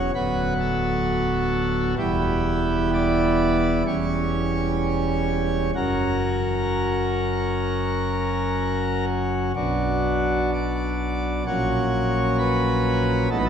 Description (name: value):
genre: classical, chorale-style piece for pipe organ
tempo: 64 BPM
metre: 4/4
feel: rubato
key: unclear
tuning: A4 = 439 Hz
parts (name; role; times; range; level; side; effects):
- pipe organ, principal chorus; solo; 0.0-13.5 s; D1 to D5; -20 LUFS; equal; none
room: wet church reverb, RT60 3.0 s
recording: minimal, uncompressed stereo recording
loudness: -20 LUFS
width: side -8 dB against mid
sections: 0.0-13.5 A section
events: none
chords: 0.1 Bm/D; 2.0 Em; 3.9 C#dim/E; 5.7 F#; 9.6 Bm; 11.5 F#/A#